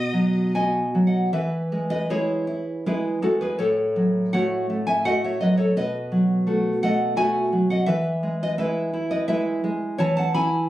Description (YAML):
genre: romantic duo for violin and classical guitar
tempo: 74-87 BPM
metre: 3/4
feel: rubato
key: E major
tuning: A4 = 438 Hz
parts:
  - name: rich violin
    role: melody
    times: 0.0-0.5 s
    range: D#5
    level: -32 LUFS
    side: left 1 dB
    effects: slapback echo
  - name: nylon-string guitar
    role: accompaniment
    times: 0.0-10.7 s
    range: A2 to B5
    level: -20 LUFS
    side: equal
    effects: none
room: wet small room reverb, RT60 0.6 s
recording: recorded on a phone in the room, studio reverb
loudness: -20 LUFS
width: side -14 dB against mid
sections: 0.0-1.3 A section; 1.3-10.7 B section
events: none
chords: 0.0 B; 1.3 E; 3.6 F#m/A; 5.8 B7; 7.9 E; 10.0 F#m7/E